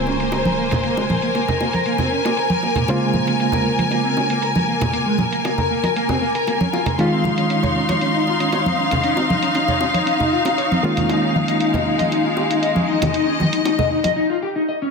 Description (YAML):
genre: nu-disco, nu disco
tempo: 117 BPM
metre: 4/4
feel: straight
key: Bb minor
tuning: A4 = 441 Hz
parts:
  - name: barky reed electric piano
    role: accompaniment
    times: 0.0-14.2 s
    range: Db3 to C5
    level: -24 LUFS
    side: right 2 dB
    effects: overdrive, fast tremolo, dub echo
  - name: clear studio string section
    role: sustained chords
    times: 0.0-14.2 s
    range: Ab3 to C6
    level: -20 LUFS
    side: left 2 dB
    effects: none
  - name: impact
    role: sound effects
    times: 0.0-0.8 s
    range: none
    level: -34 LUFS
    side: equal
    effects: none
  - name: electric guitar at the edge of break-up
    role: riff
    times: 0.1-14.9 s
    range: Bb2 to Eb5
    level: -22 LUFS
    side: left 2 dB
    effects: lush chorus, low-pass filter, dub echo
  - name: bongos and congas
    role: percussion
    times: 0.1-14.1 s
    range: none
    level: -24 LUFS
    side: right 2 dB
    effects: none
  - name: electronic hi-hat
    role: drums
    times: 0.2-14.1 s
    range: none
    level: -31 LUFS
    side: right 4 dB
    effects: low-pass filter on hats, low-pass filter on snare, low-pass filter on room
room: wet echo chamber reverb, RT60 1.8 s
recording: dense, heavily limited modern master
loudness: -16 LUFS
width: side -4 dB against mid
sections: 0.0-14.9 A section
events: impact 0.0-0.8; break 14.2-14.9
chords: 0.0 Bbm9; 7.0 Dbmaj9; 10.8 Eb9sus4